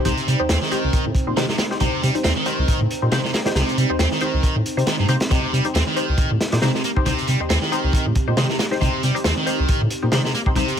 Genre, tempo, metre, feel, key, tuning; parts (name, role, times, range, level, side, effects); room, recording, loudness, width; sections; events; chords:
breakbeat, breaks; 137 BPM; 4/4; swing 56% on 16ths; A4 = 440 Hz
warbly tape-like pad; sustained chords; 0.0-10.8 s; C4 to C5; -28 LUFS; right 3 dB; chorus, built-in reverb, sidechain pumping
filtered dub chord stab; stabs; 0.0-10.7 s; Eb4 to C5; -26 LUFS; left 3 dB; phaser, analog chorus, ping-pong delay
distorted electric guitar; riff; 0.1-10.8 s; C3 to C4; -24 LUFS; equal; overdrive, tube saturation, vintage 12-bit sampler grit, ping-pong delay
dark detuned saw bass; bass; 0.1-10.8 s; C2 to C3; -21 LUFS; equal
crunchy breakbeat drum kit; drums; 0.1-10.8 s; hi-hat, kick drum, snare drum; -22 LUFS; equal
light reverb; -18 LUFS; side -8 dB against mid
0.0-10.8 A section
0.0 Cm